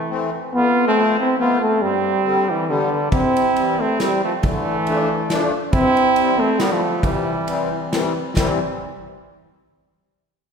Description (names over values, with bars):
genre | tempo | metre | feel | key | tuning
alpine folk, alpine dance band | 138 BPM | 3/4 | swing 55% on 8ths, rubato | C major | A4 = 436 Hz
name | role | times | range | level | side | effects
clear euphonium | melody | 0.0-8.6 s | C3 to C4 | -19 LUFS | right 1 dB | none
clear trumpet | second line | 0.0-8.6 s | G3 to F4 | -24 LUFS | right 3 dB | none
musette accordion | accompaniment | 0.1-8.6 s | F2 to D4 | -24 LUFS | left 3 dB | none
natural country drum kit | drums | 3.1-8.5 s | kick drum, ride cymbal, snare drum | -23 LUFS | equal | none
room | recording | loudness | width
wet scoring stage reverb, RT60 1.6 s | recorded in a church or concert hall | -16 LUFS | side -6 dB against mid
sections
0.0-8.4 A section; 8.4-9.7 B section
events
none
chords
0.0 Am; 0.5 F; 1.8 Gsus4; 2.7 G; 3.1 C; 4.4 Dm; 5.7 C/G; 6.6 G; 7.0 C